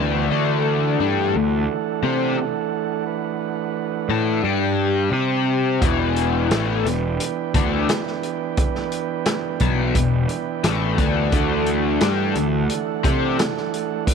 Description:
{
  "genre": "psychedelic rock",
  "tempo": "87 BPM",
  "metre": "4/4",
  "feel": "straight",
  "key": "unclear",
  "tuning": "A4 = 440 Hz",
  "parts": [
    { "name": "overdriven combo organ", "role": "sustained chords", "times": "0.0-14.1 s", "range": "E3 to G5", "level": "-25 LUFS", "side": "right 11 dB", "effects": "none" },
    { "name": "overdriven electric guitar", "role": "riff", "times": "0.0-13.4 s", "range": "E2 to C5", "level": "-22 LUFS", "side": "left 10 dB", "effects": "flanger" },
    { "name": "fuzz picked electric bass", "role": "bass", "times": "0.0-13.4 s", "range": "E1 to C3", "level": "-23 LUFS", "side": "right 1 dB", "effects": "overdrive" },
    { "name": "vintage drum kit", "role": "drums", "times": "5.8-14.1 s", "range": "hi-hat, kick drum, snare drum", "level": "-23 LUFS", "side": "equal", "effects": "none" }
  ],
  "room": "moderate plate reverb, RT60 2.1 s",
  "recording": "1960s-style stereo with parts hard left and right",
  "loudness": "-19 LUFS",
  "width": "side -6 dB against mid",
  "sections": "0.0-14.1 A section",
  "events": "none",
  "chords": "0.3 Dadd9; 4.4 G5; 5.1 C5; 5.8 Em7; 11.3 Dadd9"
}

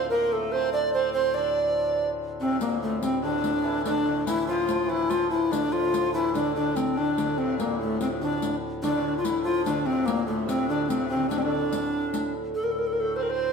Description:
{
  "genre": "medieval dance",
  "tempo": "96 BPM (dotted quarters)",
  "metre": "6/8",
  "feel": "straight",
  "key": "D minor",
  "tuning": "A4 = 441 Hz",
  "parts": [
    { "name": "breathy bright bass recorder", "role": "melody", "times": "0.0-13.5 s", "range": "A3 to D5", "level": "-25 LUFS", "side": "equal", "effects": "none" },
    { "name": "hammered dulcimer", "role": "second line", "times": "0.0-13.5 s", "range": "A2 to F4", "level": "-32 LUFS", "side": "right 3 dB", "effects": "none" },
    { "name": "hand-pumped harmonium", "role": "drone", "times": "0.0-13.5 s", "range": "D2 to A2", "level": "-36 LUFS", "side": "left 2 dB", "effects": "none" },
    { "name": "sitar", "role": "second line", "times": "0.1-13.5 s", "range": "A2 to D4", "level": "-33 LUFS", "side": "left 5 dB", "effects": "none" },
    { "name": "riq", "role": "percussion", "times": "2.6-12.3 s", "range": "none", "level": "-35 LUFS", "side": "left 5 dB", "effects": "none" }
  ],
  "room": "wet stone room reverb, RT60 1.5 s",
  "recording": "band playing live in one room",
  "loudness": "-23 LUFS",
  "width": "side -5 dB against mid",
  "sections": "0.0-2.6 A section; 2.6-12.5 A section",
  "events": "none",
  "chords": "none"
}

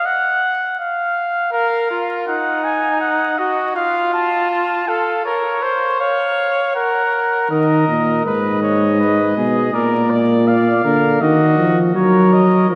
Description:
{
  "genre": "classical, imitative canzona for brass ensemble",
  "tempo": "80 BPM",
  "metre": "4/4",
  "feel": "straight",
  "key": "Eb minor",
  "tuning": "A4 = 439 Hz",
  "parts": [
    { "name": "warm trumpet", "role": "melody", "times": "0.0-12.8 s", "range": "Bb4 to A5", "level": "-22 LUFS", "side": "equal", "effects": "none" },
    { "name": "clear trumpet", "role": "second line", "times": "1.5-12.7 s", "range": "Eb4 to D5", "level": "-22 LUFS", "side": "equal", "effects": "none" },
    { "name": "dark euphonium", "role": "accompaniment", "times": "7.5-12.8 s", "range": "Ab2 to Gb3", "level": "-17 LUFS", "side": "equal", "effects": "none" }
  ],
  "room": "wet church reverb, RT60 3.3 s",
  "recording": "vinyl crackle",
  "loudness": "-17 LUFS",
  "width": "mono",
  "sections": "0.0-6.8 A section; 6.8-12.8 B section",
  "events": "none",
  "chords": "0.0 N.C.; 0.8 Bb5/F; 2.3 Ebmadd11; 3.8 F; 5.3 Bbm; 6.8 Ebm/Bb; 8.3 Abmadd11; 9.7 Bb; 11.2 Ebm"
}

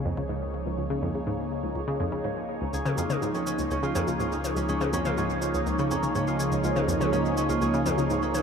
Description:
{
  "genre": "ambient, sequencer-driven space music",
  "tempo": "123 BPM",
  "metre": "4/4",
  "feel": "straight",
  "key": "Db major",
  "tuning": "A4 = 440 Hz",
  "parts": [
    { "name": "phased analog pad", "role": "sustained chords", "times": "0.0-8.4 s", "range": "F3 to Db5", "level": "-29 LUFS", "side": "right 1 dB", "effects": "phaser, chorus, shimmer reverb" },
    { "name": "analog pluck", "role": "riff", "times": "0.0-8.1 s", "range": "Db2 to Db3", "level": "-30 LUFS", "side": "left 1 dB", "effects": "chorus, tape echo" },
    { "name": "fat analog bass", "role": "bass", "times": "0.0-8.4 s", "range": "Db2", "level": "-34 LUFS", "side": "equal", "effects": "none" },
    { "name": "concert harp", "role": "arpeggios", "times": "2.7-8.4 s", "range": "Db4 to Ab4", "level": "-30 LUFS", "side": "right 1 dB", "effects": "auto-pan, tape echo, shimmer reverb" },
    { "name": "electronic shaker and toms", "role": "percussion", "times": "2.7-8.4 s", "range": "none", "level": "-35 LUFS", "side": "left 3 dB", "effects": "tape echo" }
  ],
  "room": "moderate huge ambient reverb, RT60 8.5 s",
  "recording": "in a vast, echoing space",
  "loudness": "-25 LUFS",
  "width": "side -6 dB against mid",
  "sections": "0.0-8.4 A section",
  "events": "fade-in on analog synth pad 0.0-8.4",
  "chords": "0.0 Dbadd9"
}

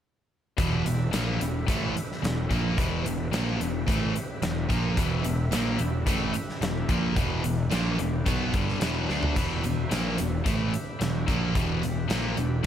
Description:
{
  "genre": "classic rock",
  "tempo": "109 BPM",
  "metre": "4/4",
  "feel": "straight",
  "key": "E minor",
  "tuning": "A4 = 438 Hz",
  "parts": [
    { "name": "overdriven tonewheel organ", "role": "sustained chords", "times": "0.6-12.7 s", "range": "E4 to E5", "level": "-40 LUFS", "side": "equal", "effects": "slow rotary speaker" },
    { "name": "sludgy distorted guitar", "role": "riff", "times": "0.6-12.7 s", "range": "E2 to D4", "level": "-30 LUFS", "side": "right 6 dB", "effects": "overdrive" },
    { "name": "tight distorted guitar", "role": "riff", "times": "0.6-12.7 s", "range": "E2 to D4", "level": "-32 LUFS", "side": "left 10 dB", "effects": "distortion" },
    { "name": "fuzz picked electric bass", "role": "bass", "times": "0.6-12.6 s", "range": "E1 to D2", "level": "-30 LUFS", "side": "left 1 dB", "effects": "overdrive" },
    { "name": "huge arena drum kit", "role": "drums", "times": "0.6-12.5 s", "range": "crash cymbal, hi-hat, kick drum, snare drum, toms", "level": "-29 LUFS", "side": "equal", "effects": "none" }
  ],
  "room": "little or no reverb",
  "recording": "none",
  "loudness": "-24 LUFS",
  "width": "side -10 dB against mid",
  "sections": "0.6-12.7 A section",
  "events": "drum fill 9.1",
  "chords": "0.6 Em"
}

